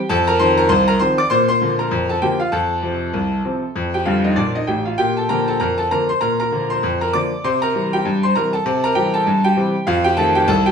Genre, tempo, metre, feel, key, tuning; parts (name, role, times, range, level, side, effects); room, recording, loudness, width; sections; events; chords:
ragtime piano; 98 BPM; 2/4; swing 60% on 16ths; Bb major; A4 = 439 Hz
bright grand piano; solo; 0.0-10.7 s; G1 to D6; -15 LUFS; equal
wet studio reverb, RT60 0.6 s; heard from further back in the room; -16 LUFS; side -6 dB against mid
0.0-10.7 A section
grand piano fill 4.1-5.0
0.1 F7; 1.3 Bb; 2.5 F; 5.0 Bb; 7.4 C7; 9.9 F7